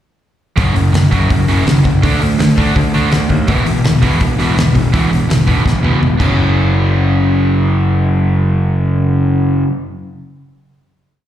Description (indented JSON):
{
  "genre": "punk rock",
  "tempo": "166 BPM",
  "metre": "4/4",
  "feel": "straight",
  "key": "unclear",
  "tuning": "A4 = 440 Hz",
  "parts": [
    { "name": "crunchy overdriven guitar", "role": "riff", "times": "0.6-9.7 s", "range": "E2 to D4", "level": "-16 LUFS", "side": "right 4 dB", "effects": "slapback echo" },
    { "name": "distorted electric guitar", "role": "riff", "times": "0.6-9.7 s", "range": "E2 to D4", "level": "-19 LUFS", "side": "left 7 dB", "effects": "distortion, slapback echo" },
    { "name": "fuzz picked electric bass", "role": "bass", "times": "0.6-9.6 s", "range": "E1 to D#2", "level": "-15 LUFS", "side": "equal", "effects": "overdrive" },
    { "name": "loose indie drum kit", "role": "drums", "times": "0.6-6.3 s", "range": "crash cymbal, hi-hat, kick drum, snare drum, toms", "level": "-16 LUFS", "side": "equal", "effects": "none" }
  ],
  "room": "small room ambience",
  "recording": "live gig heard through the venue's PA, recital hall reverb",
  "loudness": "-11 LUFS",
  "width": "side -11 dB against mid",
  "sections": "0.6-6.4 verse; 6.4-9.3 final hit",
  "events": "drum fill 5.6-6.4",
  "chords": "0.6 F#5; 2.0 D5; 3.5 E5; 6.2 F#5",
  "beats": "| 0.57 0.94 1.30 1.66 | 2.03 2.39 2.75 3.12 | 3.48 3.84 4.20 4.56 | 4.92 5.29 5.64 6.01 | 6.37 6.73 7.09 7.45 | 7.81 8.17 8.53 8.89"
}